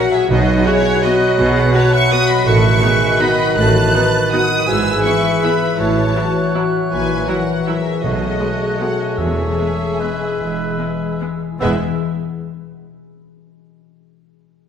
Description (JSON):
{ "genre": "classical", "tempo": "140-179 BPM", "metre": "3/4", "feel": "rubato", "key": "E major", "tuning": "A4 = 442 Hz", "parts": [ { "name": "rich symphonic violin section", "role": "melody", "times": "0.0-11.8 s", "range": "C#5 to F#6", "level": "-22 LUFS", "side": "left 2 dB", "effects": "none" }, { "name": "clear oboe", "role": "second line", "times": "0.0-11.8 s", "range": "B4 to C#5", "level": "-25 LUFS", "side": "right 2 dB", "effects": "none" }, { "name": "silver concert flute", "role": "second line", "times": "0.0-11.8 s", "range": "E6 to F#6", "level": "-26 LUFS", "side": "equal", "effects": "none" }, { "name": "warm symphonic violin section", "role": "second line", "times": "0.0-11.8 s", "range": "E4 to A5", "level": "-27 LUFS", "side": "left 1 dB", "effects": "none" }, { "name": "clear symphonic viola section", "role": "accompaniment", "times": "0.0-11.8 s", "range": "F#3 to F#4", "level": "-27 LUFS", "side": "right 1 dB", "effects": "none" }, { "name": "mellow French horn section", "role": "sustained chords", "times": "0.0-11.8 s", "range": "B3 to B4", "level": "-22 LUFS", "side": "left 2 dB", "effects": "none" }, { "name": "concert harp", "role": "arpeggios", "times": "0.0-12.8 s", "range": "G#2 to C#6", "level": "-23 LUFS", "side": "left 7 dB", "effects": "none" }, { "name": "dark clarinet", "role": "second line", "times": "0.3-11.8 s", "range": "F#4 to G#4", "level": "-26 LUFS", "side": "right 1 dB", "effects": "none" }, { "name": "dark bassoon", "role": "accompaniment", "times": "0.3-11.8 s", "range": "D#3 to B3", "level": "-24 LUFS", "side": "right 3 dB", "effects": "none" }, { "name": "rich chamber cello section", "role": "bass", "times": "0.3-11.8 s", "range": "E2 to B2", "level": "-24 LUFS", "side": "right 3 dB", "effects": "none" }, { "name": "rich studio double bass section", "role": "bass", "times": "0.3-11.8 s", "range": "E1 to B1", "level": "-22 LUFS", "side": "right 3 dB", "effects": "none" }, { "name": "timpani", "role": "percussion", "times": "0.3-0.8, 8.0-11.8 s", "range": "E2 to B2", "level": "-24 LUFS", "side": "right 2 dB", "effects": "none" } ], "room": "wet scoring stage reverb, RT60 1.9 s", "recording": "minimal, uncompressed stereo recording", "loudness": "-14 LUFS", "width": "side -8 dB against mid", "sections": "0.0-11.6 A section; 11.6-12.8 B section", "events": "none", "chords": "0.3 B; 2.5 B7/A; 4.7 E/G#; 5.8 F#m7/A; 6.9 F#7/A#; 8.0 B13; 9.2 E" }